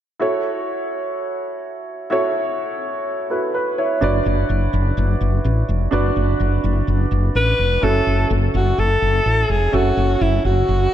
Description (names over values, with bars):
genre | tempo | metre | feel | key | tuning
1980s-style pop | 126 BPM | 4/4 | straight | F# minor | A4 = 440 Hz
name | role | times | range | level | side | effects
clear baby grand piano | accompaniment | 0.2-10.9 s | C#4 to D5 | -22 LUFS | right 2 dB | none
woody fretless electric bass | bass | 4.0-10.9 s | E#1 to A1 | -18 LUFS | equal | ensemble chorus
breathy alto saxophone | melody | 7.4-10.9 s | E4 to B4 | -19 LUFS | left 1 dB | tape echo
room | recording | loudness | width
moderate lush hall reverb, RT60 2.4 s | dark, warm production | -16 LUFS | side -11 dB against mid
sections
0.2-7.8 A section; 7.8-10.9 B section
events
none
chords
0.2 F#m7; 4.0 Bm; 7.8 F#m7